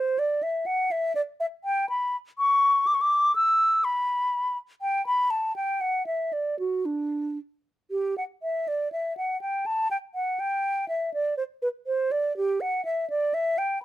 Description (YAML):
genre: classical, baroque-style fantasia for unaccompanied flute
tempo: 122 BPM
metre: 3/4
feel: rubato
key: D major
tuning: A4 = 440 Hz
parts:
  - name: mellow hollow silver concert flute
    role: solo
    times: 0.0-13.8 s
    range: D4 to E6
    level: -23 LUFS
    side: equal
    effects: none
room: light reverb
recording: close, detailed microphones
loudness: -24 LUFS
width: side -14 dB against mid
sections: 0.0-7.9 A section; 7.9-13.8 A section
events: none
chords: none